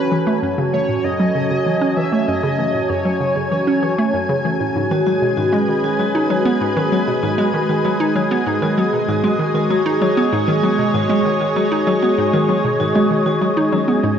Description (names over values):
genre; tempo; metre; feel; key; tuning
ambient, sequencer-driven space music; 97 BPM; 4/4; straight; unclear; A4 = 441 Hz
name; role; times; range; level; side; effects
pulse-width lead; melody; 0.0-4.4 s; B4 to E5; -23 LUFS; left 1 dB; chorus, tape echo
lush unison pad; sustained chords; 0.0-14.2 s; F#3 to G#5; -19 LUFS; right 1 dB; chorus
hollow square pluck; riff; 0.0-14.2 s; F#2 to D#4; -19 LUFS; right 1 dB; chorus, tape echo
vibraphone with hard mallets; arpeggios; 4.9-14.0 s; C#4 to F#4; -22 LUFS; left 3 dB; auto-pan, tape echo
room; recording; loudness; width
wet scoring stage reverb, RT60 2.2 s; worn, warbling old tape, cassette tape, warbly pitch drift, nothing above 7.8 kHz; -15 LUFS; side -8 dB against mid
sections
0.0-14.2 A section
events
none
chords
0.0 F#madd9; 4.8 G#m